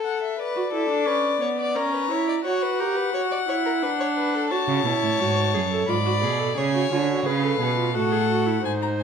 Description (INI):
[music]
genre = classical, baroque-style fugue for string quartet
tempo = 87 BPM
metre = 3/4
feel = straight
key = unclear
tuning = A4 = 440 Hz
[part]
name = rich violin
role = melody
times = 0.0-9.0 s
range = D5 to Cb6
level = -27 LUFS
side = left 7 dB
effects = none
[part]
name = warm violin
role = second line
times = 0.0-9.0 s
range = A4 to D5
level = -27 LUFS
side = left 3 dB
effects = none
[part]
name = warm viola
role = accompaniment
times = 0.6-9.0 s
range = B3 to A4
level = -26 LUFS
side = right 4 dB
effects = none
[part]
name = rich cello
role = bass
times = 4.7-9.0 s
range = F#2 to D3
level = -24 LUFS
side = right 5 dB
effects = none
[sound]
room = wet recital hall reverb, RT60 1.3 s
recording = none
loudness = -21 LUFS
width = side -6 dB against mid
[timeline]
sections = 0.0-8.6 A section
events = none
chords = 0.4 Bm; 1.8 A#dim/C#; 2.4 F#7(no3); 3.8 Bm/D; 4.5 F#m; 5.9 Fdim7/Ab (rootless); 6.6 C#7; 7.9 F#m/A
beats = | 0.39 1.07 1.76 | 2.45 3.14 3.82 | 4.50 5.19 5.88 | 6.57 7.26 7.95 | 8.65